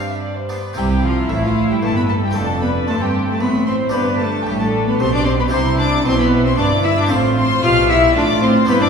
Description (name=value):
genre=classical, baroque-style concerto movement with solo episodes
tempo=113 BPM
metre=3/4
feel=straight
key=C major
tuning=A4 = 441 Hz
part: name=dark cello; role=melody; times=0.0-8.9 s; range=E3 to F4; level=-20 LUFS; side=left 1 dB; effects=none
part: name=warm chamber violin section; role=melody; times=0.0-8.9 s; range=D5 to F6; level=-24 LUFS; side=left 4 dB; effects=none
part: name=warm chamber violin section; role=second line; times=0.0-8.9 s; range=E4 to F5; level=-21 LUFS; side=left 3 dB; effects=none
part: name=dark chamber viola section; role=accompaniment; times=0.0-8.9 s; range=G3 to G4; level=-24 LUFS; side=right 1 dB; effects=none
part: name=harpsichord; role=accompaniment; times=0.0-8.9 s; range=F2 to C5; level=-26 LUFS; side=right 1 dB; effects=none
part: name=dark chamber cello section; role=bass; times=0.0-8.9 s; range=F2 to C3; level=-22 LUFS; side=right 2 dB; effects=none
part: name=warm studio double bass section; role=bass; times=0.8-8.9 s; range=F1 to C2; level=-23 LUFS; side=right 3 dB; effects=none
room=wet scoring stage reverb, RT60 1.6 s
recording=heard from further back in the room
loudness=-14 LUFS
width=side -6 dB against mid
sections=0.8-8.9 A section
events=none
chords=0.2 G; 0.8 C; 2.4 F; 3.9 G; 5.5 C; 7.1 F/A